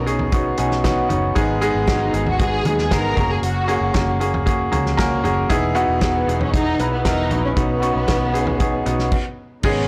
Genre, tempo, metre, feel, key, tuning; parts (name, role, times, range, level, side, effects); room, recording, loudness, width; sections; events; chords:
piano-driven pop; 116 BPM; 4/4; straight; B major; A4 = 440 Hz
rich studio violin section; melody; 0.0-9.9 s; B3 to A#4; -27 LUFS; equal; digital delay
bright upright piano; accompaniment; 0.0-9.9 s; G#2 to G#5; -22 LUFS; equal
vintage muted fingered electric bass; bass; 0.0-9.9 s; E1 to D#2; -26 LUFS; equal
natural country drum kit; drums; 0.1-9.8 s; crash cymbal, hi-hat, kick drum, snare drum, toms; -25 LUFS; equal
dark studio string section; sustained chords; 9.6-9.9 s; B2 to D#4; -32 LUFS; equal
moderate plate reverb, RT60 2.0 s; blown-out, overdriven recording, overdrive; -19 LUFS; mono
0.0-9.6 A section
upright piano fill 0.3-1.4, 4.7-5.5; stop 9.1-9.6
0.0 Badd9; 1.4 G#m; 3.2 F#add9; 5.5 Emaj7; 7.6 Badd9